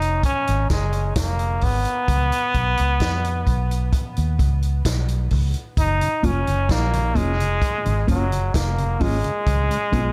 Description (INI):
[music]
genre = dub reggae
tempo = 65 BPM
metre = 4/4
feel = straight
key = F# major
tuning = A4 = 440 Hz
[part]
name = brilliant trombone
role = melody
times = 0.0-10.1 s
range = F#3 to D#4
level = -26 LUFS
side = equal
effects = dub echo
[part]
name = vintage muted fingered electric bass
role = bass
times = 0.0-10.1 s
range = E#1 to E#2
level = -24 LUFS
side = equal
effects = none
[part]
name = vintage drum kit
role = drums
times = 0.0-10.1 s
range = hi-hat, kick drum, snare drum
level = -27 LUFS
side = equal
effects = none
[part]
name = mellow tonewheel organ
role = accompaniment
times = 6.0-10.0 s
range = F#2 to E#4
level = -32 LUFS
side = equal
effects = slow rotary speaker
[part]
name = mellow electric guitar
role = accompaniment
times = 6.2-10.1 s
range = G#3 to E#4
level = -30 LUFS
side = equal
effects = dub echo
[sound]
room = light reverb, studio ambience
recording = none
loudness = -21 LUFS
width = mono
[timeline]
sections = 0.0-10.1 A section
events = break 0.0-5.8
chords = 0.0 F#maj7; 2.1 C#7; 5.8 F#maj7; 9.5 C#7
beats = 0.24 1.16 | 2.08 3.01 3.93 4.85 | 5.77 6.70 7.62 8.54 | 9.46